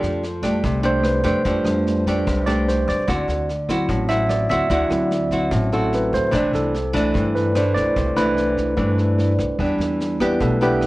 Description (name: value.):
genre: bossa nova.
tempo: 147 BPM.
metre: 4/4.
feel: straight.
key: C major.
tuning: A4 = 440 Hz.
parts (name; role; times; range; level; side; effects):
nylon-string guitar; accompaniment; 0.0-10.9 s; G2 to G4; -22 LUFS; equal; none.
upright bass; bass; 0.0-10.9 s; A1 to G2; -25 LUFS; equal; none.
vintage brush drum kit; drums; 0.0-10.9 s; kick drum, rim click, snare drum; -30 LUFS; equal; none.
barky tine electric piano; accompaniment; 0.4-10.9 s; F#3 to E5; -21 LUFS; right 1 dB; medium stereo tremolo.
room: light reverb.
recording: worn, warbling old tape, cassette tape, warbly pitch drift.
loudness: -18 LUFS.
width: side -19 dB against mid.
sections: 0.0-9.6 A section; 9.6-10.9 A section.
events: tine electric piano solo 0.0-9.6, 9.6-10.9.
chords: 0.0 F69; 3.1 D9; 6.3 C69; 9.6 Em7.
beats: 0.23 0.64 1.05 | 1.45 1.86 2.27 2.67 | 3.08 3.49 3.90 4.30 | 4.71 5.12 5.52 5.93 | 6.34 6.74 7.15 7.56 | 7.96 8.37 8.78 9.19 | 9.59 10.00 10.41 10.81.